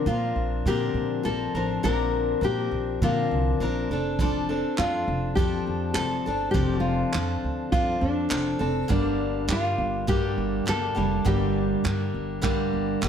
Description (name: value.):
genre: acoustic pop.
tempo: 102 BPM.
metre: 4/4.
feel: swing 60% on 16ths.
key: unclear.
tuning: A4 = 440 Hz.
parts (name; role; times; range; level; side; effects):
nylon-string guitar; melody; 0.0-13.0 s; D4 to Bb4; -28 LUFS; left 1 dB; none.
picked steel-string acoustic guitar; accompaniment; 0.0-13.1 s; G2 to Bb4; -27 LUFS; left 2 dB; none.
upright bass; bass; 0.1-13.1 s; F1 to Bb2; -29 LUFS; right 1 dB; none.
vintage brush drum kit; drums; 4.2-13.1 s; handclaps, kick drum; -29 LUFS; right 3 dB; none.
room: moderate plate reverb, RT60 1.3 s.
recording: heard from further back in the room.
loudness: -23 LUFS.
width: side -8 dB against mid.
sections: 0.0-13.1 A section.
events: none.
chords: 0.0 Bbadd9; 3.9 F6; 8.9 Gm.